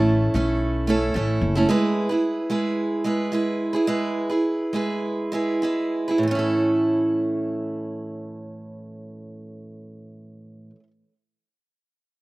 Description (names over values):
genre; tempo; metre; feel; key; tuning
acoustic pop; 95-112 BPM; 4/4; straight; A major; A4 = 440 Hz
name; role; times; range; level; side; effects
picked steel-string acoustic guitar; accompaniment; 0.0-10.9 s; A2 to B4; -22 LUFS; right 2 dB; none
upright bass; bass; 0.0-1.6 s; F#1 to B1; -23 LUFS; left 1 dB; none
room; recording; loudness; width
little or no reverb; recorded outdoors, with no room sound; -21 LUFS; side -19 dB against mid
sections
0.0-6.2 A section; 6.2-11.3 B section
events
slowing down 1.7-6.2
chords
0.0 A; 1.7 E/G#; 6.2 A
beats
0.08 0.61 1.15 | 1.68 2.22 2.76 3.31 | 3.87 4.44 5.02 5.62 | 6.25 6.88 7.51 8.14 | 8.77 9.40 10.03 10.66